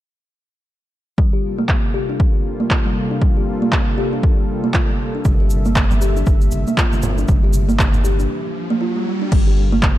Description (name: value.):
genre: afro house.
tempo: 118 BPM.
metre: 4/4.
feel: swing 59% on 16ths.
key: G dorian.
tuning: A4 = 440 Hz.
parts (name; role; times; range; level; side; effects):
warm analog pad; sustained chords; 1.2-10.0 s; C3 to E5; -27 LUFS; left 1 dB; chorus, sidechain pumping.
kalimba; arpeggios; 1.2-9.8 s; G3 to G4; -22 LUFS; equal; sidechain pumping, low-pass filter, ping-pong delay.
electronic kick drum; drums; 1.2-9.9 s; none; -16 LUFS; equal; overdrive.
deep house drum kit; drums; 1.7-9.9 s; crash cymbal, handclaps; -24 LUFS; right 1 dB; overdrive, low-pass filter on snare, low-pass filter on cymbals.
tube shaker; percussion; 5.2-8.3 s; none; -36 LUFS; right 2 dB; none.
warm sub bass; bass; 5.3-10.0 s; G1; -19 LUFS; equal; sidechain pumping.
congas; percussion; 5.3-9.9 s; none; -28 LUFS; right 3 dB; none.
riser; sound effects; 7.6-9.3 s; none; -28 LUFS; right 1 dB; none.
room: small room ambience.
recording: dark, warm production.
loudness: -15 LUFS.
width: side -14 dB against mid.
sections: 1.2-9.3 A section.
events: riser 7.6-9.3; break 8.3-9.3.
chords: 1.2 Gm11.